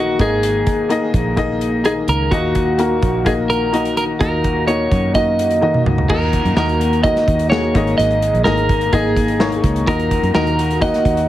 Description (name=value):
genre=piano-driven pop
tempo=127 BPM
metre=4/4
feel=straight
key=Eb minor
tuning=A4 = 441 Hz
part: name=clean electric guitar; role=melody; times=0.0-11.3 s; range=Gb4 to Eb5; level=-18 LUFS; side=right 1 dB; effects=none
part: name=bright upright piano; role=accompaniment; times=0.0-11.3 s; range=Ab2 to Gb5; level=-19 LUFS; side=left 3 dB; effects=none
part: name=airy breathy pad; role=sustained chords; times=0.0-11.3 s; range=Eb3 to Ab4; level=-27 LUFS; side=equal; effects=chorus
part: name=fingered electric bass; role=bass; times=0.0-11.3 s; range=Ab1 to Gb2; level=-21 LUFS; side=right 1 dB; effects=none
part: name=modern studio drum kit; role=drums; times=0.2-11.3 s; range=crash cymbal, hi-hat, kick drum, snare drum, toms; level=-21 LUFS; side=right 1 dB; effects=none
room=light reverb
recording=heavily compressed radio sound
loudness=-14 LUFS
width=side -13 dB against mid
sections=0.0-6.1 A section; 6.1-11.3 B section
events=drum fill 5.6-6.1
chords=0.2 Absus2; 2.3 Ebm; 7.7 Absus2; 9.9 Ebm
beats=| 0.43 0.90 1.38 1.85 | 2.32 2.79 3.26 3.73 | 4.21 4.68 5.15 5.62 | 6.10 6.57 7.04 7.51 | 7.99 8.46 8.93 9.40 | 9.87 10.35 10.82